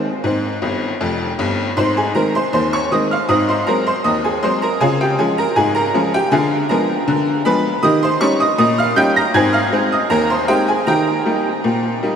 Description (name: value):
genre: ragtime piano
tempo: 79 BPM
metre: 2/4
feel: straight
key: Ab major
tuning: A4 = 439 Hz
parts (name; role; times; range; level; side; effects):
- tack piano; solo; 0.0-12.2 s; F1 to Bb6; -14 LUFS; equal; diffuse ambient delay
room: wet huge ambient reverb, RT60 7.2 s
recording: dreamy mix soaked in reverb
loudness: -14 LUFS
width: side -7 dB against mid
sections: 0.0-1.8 A section; 1.8-12.2 B section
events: honky-tonk piano fill 0.6-1.8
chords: 0.0 Ab; 3.3 Ab7; 4.8 Db; 6.3 Ddim7; 7.8 Eb7; 9.3 Ab; 10.9 Eb